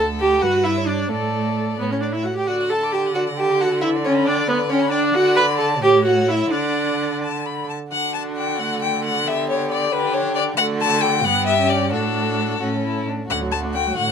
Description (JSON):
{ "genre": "quick classical-period movement for string quartet", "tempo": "88 BPM (dotted quarters)", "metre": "6/8", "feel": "straight", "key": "D major", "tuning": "A4 = 440 Hz", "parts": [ { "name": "rich violin", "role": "melody", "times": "0.0-14.1 s", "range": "A4 to D6", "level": "-23 LUFS", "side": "left 7 dB", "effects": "none" }, { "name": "dark violin", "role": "second line", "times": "0.0-14.1 s", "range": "D4 to B5", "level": "-26 LUFS", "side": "left 1 dB", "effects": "none" }, { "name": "rich viola", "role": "accompaniment", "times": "0.0-14.1 s", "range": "D3 to B4", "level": "-21 LUFS", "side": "right 1 dB", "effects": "none" }, { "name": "rich cello", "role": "bass", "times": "0.0-14.1 s", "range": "D2 to D3", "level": "-25 LUFS", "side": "right 4 dB", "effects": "none" } ], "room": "light reverb", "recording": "minimal, uncompressed stereo recording", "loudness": "-18 LUFS", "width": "side -7 dB against mid", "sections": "0.0-7.9 A section; 7.9-14.1 A section", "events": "none", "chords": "0.4 G; 1.1 D5/A; 1.8 A; 2.5 D; 3.8 G/D; 5.1 D6; 5.8 A; 6.5 D; 9.3 G/D; 10.6 D; 11.2 G; 11.9 D/A; 12.6 A; 13.3 D" }